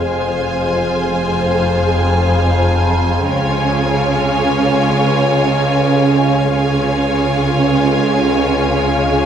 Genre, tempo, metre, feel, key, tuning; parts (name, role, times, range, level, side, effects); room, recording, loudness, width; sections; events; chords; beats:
cinematic, suspense film score; free time; A4 = 441 Hz
dark studio violin section; melody; 0.0-9.3 s; Ab5; -22 LUFS; left 1 dB
flickering grainy texture; sustained chords; 0.0-9.3 s; Ab4 to F5; -21 LUFS; equal; built-in reverb
warm studio cello section; bass; 0.0-9.3 s; F2 to C#3; -20 LUFS; right 3 dB
warm studio double bass section; bass; 0.0-9.3 s; F1 to C#2; -20 LUFS; right 2 dB
overtone-sweeping drone; drone; 0.0-9.3 s; C#2 to F2; -19 LUFS; right 1 dB; chorus, built-in reverb, phaser
warm studio violin section; second line; 0.1-9.3 s; F4 to C#5; -20 LUFS; left 2 dB
clear studio violin section; texture; 3.3-9.3 s; E#5 to G#5; -28 LUFS; left 8 dB
wet scoring stage reverb, RT60 1.7 s; -13 LUFS; side -8 dB against mid
0.0-9.3 A section
0.0 Fm; 3.3 C#
free time